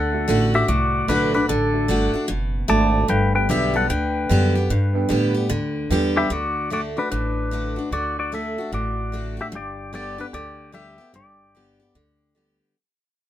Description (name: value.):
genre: honky-tonk and classic country.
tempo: 149 BPM.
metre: 4/4.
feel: swing 63% on 8ths.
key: G major.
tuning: A4 = 441 Hz.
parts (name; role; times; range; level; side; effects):
pedal steel guitar; melody; 0.0-12.6 s; D4 to A5; -24 LUFS; left 2 dB; none.
picked steel-string acoustic guitar; accompaniment; 0.0-12.8 s; G2 to G4; -24 LUFS; left 1 dB; none.
upright bass; bass; 0.0-12.6 s; F#1 to A2; -24 LUFS; right 1 dB; none.
dark baby grand piano; accompaniment; 0.1-6.3 s; A3 to B5; -27 LUFS; right 6 dB; none.
room: light reverb.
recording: minimal, uncompressed stereo recording.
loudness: -19 LUFS.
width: side -12 dB against mid.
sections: 0.0-6.3 A section; 6.3-12.8 B section.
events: grand piano fill 5.7-6.3; fade-out 6.3-12.8.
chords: 0.0 D; 3.1 Gadd9; 6.3 D; 9.5 G.